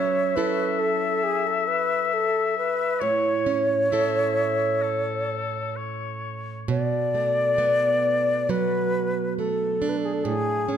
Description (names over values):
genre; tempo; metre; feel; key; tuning
celtic folk, Celtic slow air; 67 BPM; 4/4; rubato; unclear; A4 = 440 Hz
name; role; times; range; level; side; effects
wooden flute; melody; 0.0-10.8 s; G#4 to D5; -23 LUFS; left 1 dB; none
warm oboe; second line; 0.0-6.7 s; A4 to E5; -27 LUFS; left 8 dB; none
picked plugged-in old ladder-braced acoustic guitar; accompaniment; 0.0-10.8 s; A2 to A4; -28 LUFS; right 5 dB; none
room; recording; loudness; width
moderate recital hall reverb, RT60 1.7 s; dark, warm production; -21 LUFS; side -9 dB against mid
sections
0.0-6.7 A section; 6.7-10.8 B section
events
none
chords
0.0 F#m7; 3.0 A; 6.7 Bm7; 10.2 Amaj7